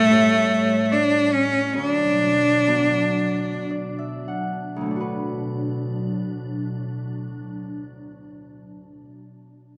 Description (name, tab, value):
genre	celtic folk, Celtic slow air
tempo	48-79 BPM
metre	3/4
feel	rubato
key	D major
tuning	A4 = 440 Hz
part	bright cello	melody	0.0-3.7 s	A3 to D4	-20 LUFS	equal	none
part	Celtic harp	accompaniment	0.0-9.3 s	D2 to F#5	-33 LUFS	equal	none
part	soft additive organ-like pad	sustained chords	0.0-9.1 s	A2 to C#5	-31 LUFS	equal	ensemble chorus, built-in reverb
room	moderate plate reverb, RT60 3.0 s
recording	rough home demo mix, nothing above 10.7 kHz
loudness	-22 LUFS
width	mono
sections	0.0-4.9 A section; 4.9-8.4 B section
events	slowing down 0.0-4.9; harp fill 3.2-4.9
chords	0.0 A7; 1.8 D6